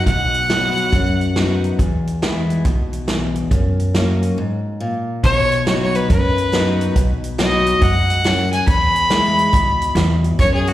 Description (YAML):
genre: honky-tonk and classic country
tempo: 139 BPM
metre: 4/4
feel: swing 65% on 8ths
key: B major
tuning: A4 = 440 Hz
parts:
  - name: clear fiddle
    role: melody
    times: 0.0-1.6, 5.2-10.7 s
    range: F#4 to B5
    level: -18 LUFS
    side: equal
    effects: plate reverb, slapback echo
  - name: picked steel-string acoustic guitar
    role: accompaniment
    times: 0.0-10.7 s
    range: E2 to F#4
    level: -20 LUFS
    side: left 2 dB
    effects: plate reverb, slapback echo
  - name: upright bass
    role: bass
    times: 0.1-10.7 s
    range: B1 to F#2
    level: -21 LUFS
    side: equal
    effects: none
  - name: vintage drum kit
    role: drums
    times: 0.1-10.7 s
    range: hi-hat, kick drum, snare drum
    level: -20 LUFS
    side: equal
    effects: none
room: light reverb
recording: live gig heard through the venue's PA, recital hall reverb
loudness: -15 LUFS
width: side -14 dB against mid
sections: 0.0-5.2 A section; 5.2-10.7 B section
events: break 4.4-5.2; fiddle solo 5.2-10.7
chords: 0.0 B; 1.8 E; 3.5 F#; 5.2 B; 8.7 E